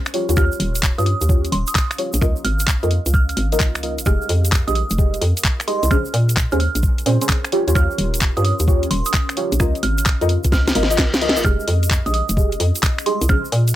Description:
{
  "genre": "UK garage, two-step garage",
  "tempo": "130 BPM",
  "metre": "4/4",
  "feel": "swing 66% on 16ths",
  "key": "F minor",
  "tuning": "A4 = 442 Hz",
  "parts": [
    { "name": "deep dark ambient pad", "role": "texture", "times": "0.3-13.8 s", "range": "Db4 to C6", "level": "-34 LUFS", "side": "left 4 dB", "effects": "chorus, built-in reverb, sidechain pumping" },
    { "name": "deep mellow chord stab", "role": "stabs", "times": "0.1-13.4 s", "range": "Db4 to Eb5", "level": "-23 LUFS", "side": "equal", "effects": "chorus, phaser" },
    { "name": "garage drum kit", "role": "drums", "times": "0.1-13.7 s", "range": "finger snaps, handclaps, hi-hat, snare drum", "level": "-22 LUFS", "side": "equal", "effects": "none" },
    { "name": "egg shaker", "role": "percussion", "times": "0.1-13.7 s", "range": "none", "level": "-30 LUFS", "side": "right 3 dB", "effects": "none" },
    { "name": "hollow knocking FM bass", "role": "bass", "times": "0.3-13.8 s", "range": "Eb1 to Bb2", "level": "-19 LUFS", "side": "equal", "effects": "sidechain pumping" },
    { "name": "glassy synth bell", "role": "melody", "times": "0.4-13.5 s", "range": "C6 to F6", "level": "-27 LUFS", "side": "right 4 dB", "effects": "chorus, dub echo" },
    { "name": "electronic kick drum", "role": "drums", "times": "0.4-13.4 s", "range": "none", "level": "-18 LUFS", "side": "equal", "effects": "none" },
    { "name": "reverse cymbal", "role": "sound effects", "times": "10.8-11.4 s", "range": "none", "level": "-26 LUFS", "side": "equal", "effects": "none" }
  ],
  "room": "little or no reverb",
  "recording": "none",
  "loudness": "-16 LUFS",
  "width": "side -14 dB against mid",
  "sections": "0.0-13.8 A section",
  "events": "fade-in on ambient pad 0.0-13.8; drum fill 10.5-11.4; reverse cymbal 10.8-11.4",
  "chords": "0.1 Eb9; 2.2 Db69; 4.1 Fm9; 5.9 Bbm9; 7.5 Eb9; 9.6 Db69; 11.4 Fm9",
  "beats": "| 0.37 0.83 1.29 1.75 | 2.21 2.68 3.14 3.60 | 4.06 4.52 4.98 5.45 | 5.91 6.37 6.83 7.29 | 7.75 8.21 8.68 9.14 | 9.60 10.06 10.52 10.98 | 11.45 11.91 12.37 12.83 | 13.29"
}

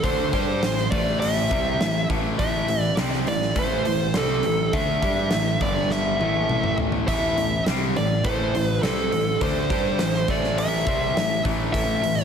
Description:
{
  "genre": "hard rock",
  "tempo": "102 BPM",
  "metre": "4/4",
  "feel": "straight",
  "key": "A minor",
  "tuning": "A4 = 438 Hz",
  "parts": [
    { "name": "high-gain lead guitar", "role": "melody", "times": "0.0-12.2 s", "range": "A4 to E5", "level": "-24 LUFS", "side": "right 1 dB", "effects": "distortion" },
    { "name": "sludgy distorted guitar", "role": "riff", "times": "0.0-12.2 s", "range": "G2 to G4", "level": "-25 LUFS", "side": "left 1 dB", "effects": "overdrive, slapback echo" },
    { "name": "fuzz picked electric bass", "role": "bass", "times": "0.0-12.2 s", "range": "G1 to G2", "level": "-29 LUFS", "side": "equal", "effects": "overdrive" },
    { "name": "huge arena drum kit", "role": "drums", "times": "0.0-12.2 s", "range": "hi-hat, kick drum, snare drum, splash cymbal, toms", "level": "-27 LUFS", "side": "equal", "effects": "none" }
  ],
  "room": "moderate concert hall reverb, RT60 2.3 s",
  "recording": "big arena sound",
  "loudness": "-20 LUFS",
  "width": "side -7 dB against mid",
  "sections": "0.0-12.2 A section",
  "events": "drum fill 5.9-7.1",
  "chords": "0.0 Am; 5.6 G5; 6.2 Am",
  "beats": "| 0.04 0.63 1.22 1.80 | 2.39 2.98 3.57 4.15 | 4.74 5.33 5.91 6.50 | 7.08 7.67 8.25 8.83 | 9.42 10.00 10.58 11.16 | 11.75"
}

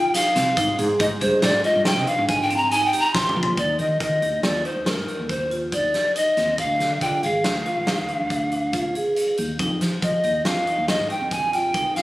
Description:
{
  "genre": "progressive instrumental, band music in an uneven meter",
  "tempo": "140 BPM",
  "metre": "7/4",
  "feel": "straight",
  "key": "Eb major",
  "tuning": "A4 = 440 Hz",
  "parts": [
    { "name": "pan flute", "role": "melody", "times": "0.0-12.0 s", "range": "Bb4 to C6", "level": "-22 LUFS", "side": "equal", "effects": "plate reverb, digital delay" },
    { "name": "vibraphone with hard mallets", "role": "arpeggios", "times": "0.0-12.0 s", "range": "C4 to Ab4", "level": "-27 LUFS", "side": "right 1 dB", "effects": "plate reverb" },
    { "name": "huge arena drum kit", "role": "drums", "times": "0.1-12.0 s", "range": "hi-hat, kick drum, snare drum, toms", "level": "-26 LUFS", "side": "equal", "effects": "none" },
    { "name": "woody fretless electric bass", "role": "bass", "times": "0.4-11.9 s", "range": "Ab1 to F3", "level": "-28 LUFS", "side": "equal", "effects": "none" }
  ],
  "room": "moderate small room ambience, RT60 0.5 s",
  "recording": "recorded on a phone in the room, studio ambience",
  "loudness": "-19 LUFS",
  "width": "side -17 dB against mid",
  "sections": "0.0-3.6 A section; 3.6-12.0 B section",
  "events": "pan flute solo 0.0-3.6; drum fill 3.1-3.6",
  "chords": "0.0 F7(no3); 0.6 Abmaj7; 3.6 Ebmaj7; 6.6 Fm69/Ab; 9.6 F7(no3)",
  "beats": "0.14 | 0.57 1.00 1.43 1.86 2.29 2.72 3.15 | 3.58 4.01 4.44 4.87 5.29 5.72 6.15 | 6.58 7.01 7.44 7.88 8.30 8.73 9.16 | 9.60 10.03 10.46 10.89 11.32 11.75"
}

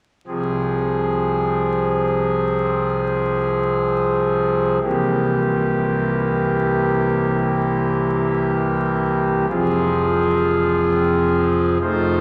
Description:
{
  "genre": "classical, chorale-style piece for pipe organ",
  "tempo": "52 BPM",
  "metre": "4/4",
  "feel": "rubato",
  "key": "F minor",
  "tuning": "A4 = 440 Hz",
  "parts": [
    { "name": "pipe organ, foundations", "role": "solo", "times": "0.3-12.2 s", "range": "F1 to C5", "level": "-19 LUFS", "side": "equal", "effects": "none" }
  ],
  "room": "wet cathedral reverb, RT60 5.8 s",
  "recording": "vinyl crackle",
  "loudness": "-20 LUFS",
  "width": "mono",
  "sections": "0.3-9.5 A section; 9.5-12.2 B section",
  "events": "none",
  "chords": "0.3 Fm/C; 4.8 C7; 9.5 Fm",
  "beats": "| 0.26 1.42 2.55 3.68 | 4.82 5.97 7.12 8.30 | 9.49 10.66 11.82"
}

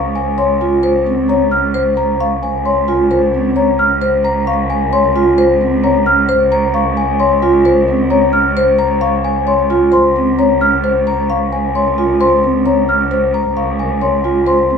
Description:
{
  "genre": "classical, minimalist pattern music",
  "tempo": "132 BPM",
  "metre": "5/4",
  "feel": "straight",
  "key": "Db major",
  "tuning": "A4 = 440 Hz",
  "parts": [
    { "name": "marimba with medium mallets", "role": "melody", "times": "0.0-14.8 s", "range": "C5 to F5", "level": "-16 LUFS", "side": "left 4 dB", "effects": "none" },
    { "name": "large celesta", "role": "arpeggios", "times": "0.0-14.8 s", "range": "Ab5 to F6", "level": "-18 LUFS", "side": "left 1 dB", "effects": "none" },
    { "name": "warm cello", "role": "bass", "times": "0.0-14.8 s", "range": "Db2", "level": "-18 LUFS", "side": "right 3 dB", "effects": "none" },
    { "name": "vibraphone with soft mallets", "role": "arpeggios", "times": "0.2-14.8 s", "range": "C4 to C5", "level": "-17 LUFS", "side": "right 2 dB", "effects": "none" }
  ],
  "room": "wet large studio reverb, RT60 0.9 s",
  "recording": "heard from further back in the room",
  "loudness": "-11 LUFS",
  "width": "side -6 dB against mid",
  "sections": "0.0-14.8 A section",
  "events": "none",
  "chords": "0.0 Db6",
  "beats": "0.39 0.84 1.29 | 1.75 2.20 2.66 3.11 3.57 | 4.02 4.48 4.93 5.38 5.84 | 6.29 6.75 7.20 7.66 8.11 | 8.57 9.02 9.48 9.93 10.38 | 10.84 11.29 11.75 12.20 12.66 | 13.11 13.57 14.02 14.48"
}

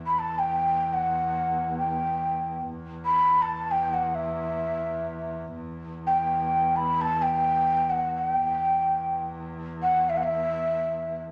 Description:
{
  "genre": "Persian modal ensemble",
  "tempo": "free time",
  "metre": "none",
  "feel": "none",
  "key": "E avaz esfahan",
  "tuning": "A4 = 440 Hz",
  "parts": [
    { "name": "rich double bass", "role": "drone", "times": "0.0-11.3 s", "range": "E2", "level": "-37 LUFS", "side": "equal", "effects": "none" },
    { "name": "breathy mellow ney", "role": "melody", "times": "0.1-11.2 s", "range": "E5 to B5", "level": "-26 LUFS", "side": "equal", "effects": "none" }
  ],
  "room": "wet large studio reverb, RT60 0.9 s",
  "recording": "none",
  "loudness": "-26 LUFS",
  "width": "mono",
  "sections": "0.0-11.3 A section",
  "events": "none",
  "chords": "none",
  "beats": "free time"
}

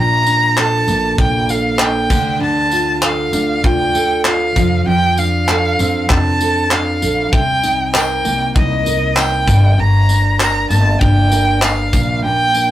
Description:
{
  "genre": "acoustic pop",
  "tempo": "98 BPM",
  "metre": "4/4",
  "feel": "straight",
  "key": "G minor",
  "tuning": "A4 = 442 Hz",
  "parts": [
    { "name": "warm violin", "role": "melody", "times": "0.0-12.7 s", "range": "Eb5 to Bb5", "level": "-17 LUFS", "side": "equal", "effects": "none" },
    { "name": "fingerpicked steel-string acoustic guitar", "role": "accompaniment", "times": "0.0-12.7 s", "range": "G2 to Bb4", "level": "-18 LUFS", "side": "right 1 dB", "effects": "none" },
    { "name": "upright bass", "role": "bass", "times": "0.0-12.7 s", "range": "G1 to F2", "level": "-19 LUFS", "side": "left 1 dB", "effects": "none" },
    { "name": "modern studio drum kit", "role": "drums", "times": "0.3-12.7 s", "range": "crash cymbal, handclaps, kick drum, tambourine", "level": "-18 LUFS", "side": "equal", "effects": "none" },
    { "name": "tambourine", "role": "percussion", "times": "7.9-11.8 s", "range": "none", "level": "-31 LUFS", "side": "left 5 dB", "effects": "none" }
  ],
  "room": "moderate studio reverb, RT60 0.5 s",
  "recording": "rough rehearsal-room recording, warm saturation",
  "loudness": "-12 LUFS",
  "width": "side -13 dB against mid",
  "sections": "0.0-12.7 A section",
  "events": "none",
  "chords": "0.0 Bbmaj7; 2.1 Dm; 4.6 F6; 7.3 Cm7; 9.5 Gm; 11.9 Bb",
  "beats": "0.57 1.18 1.79 | 2.41 3.02 3.64 4.25 | 4.87 5.48 6.10 6.71 | 7.33 7.94 8.55 9.17 | 9.78 10.40 11.01 11.63 | 12.24"
}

